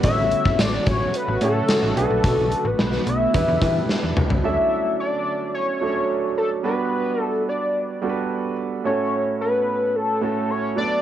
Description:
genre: 1980s-style pop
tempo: 109 BPM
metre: 4/4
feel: straight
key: unclear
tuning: A4 = 439 Hz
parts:
  - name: fat analog lead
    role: melody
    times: 0.0-11.0 s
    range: A4 to E5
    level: -23 LUFS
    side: left 2 dB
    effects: chorus, cassette tape, plate reverb
  - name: warm concert grand piano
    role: accompaniment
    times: 0.0-11.0 s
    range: A2 to C#5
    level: -25 LUFS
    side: right 5 dB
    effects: cassette tape, plate reverb
  - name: ethereal airy pad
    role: sustained chords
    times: 0.0-4.4 s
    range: C#3 to F#4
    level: -29 LUFS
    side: left 1 dB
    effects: ensemble chorus, built-in reverb, cassette tape, plate reverb
  - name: slap-like FM bass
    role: bass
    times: 0.0-4.4 s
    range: F#1 to E3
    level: -25 LUFS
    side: left 1 dB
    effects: none
  - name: gated 80s drum kit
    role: drums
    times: 0.0-4.4 s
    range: hi-hat, kick drum, snare drum, tambourine, toms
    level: -22 LUFS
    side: left 1 dB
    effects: cassette tape
room: wet booth ambience, RT60 0.3 s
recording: home recording on cassette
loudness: -19 LUFS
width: side -11 dB against mid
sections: 0.0-4.4 A section; 4.4-11.0 A section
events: drum fill 3.9-4.4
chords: 0.0 F#m; 2.0 Bm7; 3.3 Em7; 4.4 Dmaj7; 6.6 Gmaj7; 8.8 F#m/A

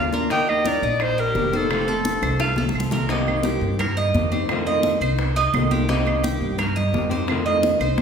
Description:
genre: latin, Cuban son and guajira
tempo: 172 BPM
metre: 4/4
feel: straight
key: unclear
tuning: A4 = 436 Hz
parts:
  - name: clear clarinet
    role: melody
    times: 0.0-2.8 s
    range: A4 to G5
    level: -23 LUFS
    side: left 1 dB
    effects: none
  - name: flamenco guitar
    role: accompaniment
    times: 0.0-8.0 s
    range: C3 to G4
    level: -27 LUFS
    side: left 2 dB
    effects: none
  - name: Cuban tres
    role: arpeggios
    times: 0.0-8.0 s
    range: Eb4 to Eb5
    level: -24 LUFS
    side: right 3 dB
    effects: none
  - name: upright bass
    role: bass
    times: 0.0-8.0 s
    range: F1 to G2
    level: -25 LUFS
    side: equal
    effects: none
  - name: bongos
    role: percussion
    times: 0.1-8.0 s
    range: none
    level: -29 LUFS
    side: left 2 dB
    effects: none
  - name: congas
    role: percussion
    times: 0.1-8.0 s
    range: none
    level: -28 LUFS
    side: equal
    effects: none
  - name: claves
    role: percussion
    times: 0.5-8.0 s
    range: none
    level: -34 LUFS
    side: right 4 dB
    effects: none
room: wet scoring stage reverb, RT60 1.8 s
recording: recorded in a church or concert hall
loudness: -19 LUFS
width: side -6 dB against mid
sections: 0.0-3.1 A section; 3.1-8.0 B section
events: drum fill 2.2-3.1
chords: 0.3 Eb; 1.7 F; 3.1 Cm7; 4.5 F7; 5.9 Cm7; 7.3 F7

